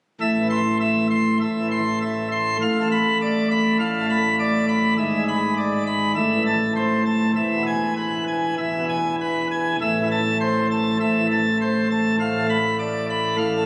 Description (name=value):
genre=classical, organ toccata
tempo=100 BPM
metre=4/4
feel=straight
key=A minor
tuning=A4 = 442 Hz
part: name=pipe organ, plenum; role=solo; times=0.2-13.7 s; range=E1 to C6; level=-21 LUFS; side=equal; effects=none
room=wet cathedral reverb, RT60 4.2 s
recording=recorded on a phone in the room, club reverb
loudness=-21 LUFS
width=mono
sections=0.2-13.7 A section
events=none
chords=0.2 Am; 2.6 Bm7b5/A; 5.0 E7/G#; 6.2 Am; 7.4 E; 9.8 Am; 12.2 Bm7b5/A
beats=| 0.20 0.80 1.40 2.01 | 2.60 3.20 3.79 4.38 | 4.97 5.56 6.15 6.75 | 7.35 7.96 8.57 9.18 | 9.79 10.39 10.99 11.59 | 12.19 12.79 13.38